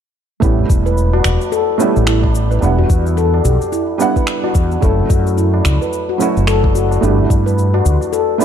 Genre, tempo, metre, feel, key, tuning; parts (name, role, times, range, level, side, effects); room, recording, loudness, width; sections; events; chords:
organic downtempo; 109 BPM; 4/4; swing 60% on 16ths; A4 = 440 Hz
felt-muted upright piano; accompaniment; 0.4-8.4 s; F#3 to F#5; -19 LUFS; right 5 dB; sidechain pumping, tape echo
handpan; arpeggios; 0.4-8.4 s; E4 to B4; -18 LUFS; left 3 dB; vintage 12-bit sampler grit, tape echo
mellow fretless electric bass; bass; 0.4-8.0 s; E1 to G2; -15 LUFS; equal; ensemble chorus, sidechain pumping
electronic cabasa and finger snaps; drums; 0.4-8.4 s; -24 LUFS; equal; overdrive
electronic kick drum; drums; 0.4-7.4 s; -15 LUFS; equal; overdrive
tabla; percussion; 0.6-8.1 s; -26 LUFS; right 1 dB
light reverb; -12 LUFS; side -8 dB against mid
0.4-8.4 A section
0.4 A7; 2.6 Em7; 4.8 F#m7; 7.0 G6